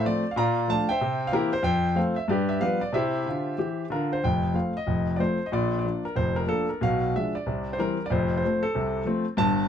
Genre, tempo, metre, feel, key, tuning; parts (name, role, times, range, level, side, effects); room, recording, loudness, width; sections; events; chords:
jazz, stride piano; 186 BPM; 4/4; swing 62% on 8ths; F major; A4 = 440 Hz
clear grand piano; solo; 0.0-9.7 s; F1 to Bb5; -23 LUFS; left 1 dB
moderate small room reverb, RT60 0.5 s; -23 LUFS; side -8 dB against mid
0.0-4.2 A section; 4.2-9.7 A section
0.4 Bbmaj7; 1.0 C7; 1.6 F; 2.3 G7; 2.9 C; 4.2 F; 5.5 Bb; 6.8 Bdim7; 7.4 C; 8.1 F